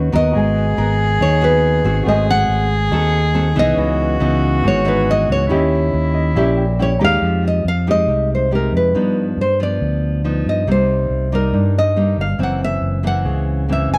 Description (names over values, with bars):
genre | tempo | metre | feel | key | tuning
bossa nova | 139 BPM | 4/4 | straight | G# minor, F minor from 7.2 s | A4 = 440 Hz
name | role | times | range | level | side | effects
nylon-string guitar | melody | 0.0-14.0 s | Bb4 to Ab5 | -22 LUFS | equal | plate reverb
warm cello | second line | 0.0-7.0 s | E4 to G#4 | -25 LUFS | equal | none
nylon-string guitar | accompaniment | 0.0-14.0 s | Gb2 to A#4 | -22 LUFS | equal | none
warm baby grand piano | accompaniment | 0.0-7.2 s | A3 to G6 | -30 LUFS | equal | none
fingered electric bass | bass | 0.0-14.0 s | Gb1 to G2 | -21 LUFS | equal | none
room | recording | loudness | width
light reverb | none | -17 LUFS | mono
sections
0.0-7.2 A section; 7.2-14.0 B section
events
grand piano fill 5.9-7.2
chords
0.3 G#m9; 2.1 G#7b9; 3.8 C#m9; 5.5 D#7b9; 7.2 Fm9; 8.9 G7b13; 10.7 Cm7; 12.4 Gb7#11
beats
| 0.34 0.77 1.20 1.63 | 2.06 2.49 2.92 3.35 | 3.78 4.21 4.64 5.07 | 5.50 5.93 6.36 6.79 | 7.22 7.65 8.09 8.52 | 8.95 9.38 9.81 10.24 | 10.68 11.11 11.54 11.97 | 12.40 12.83 13.26 13.69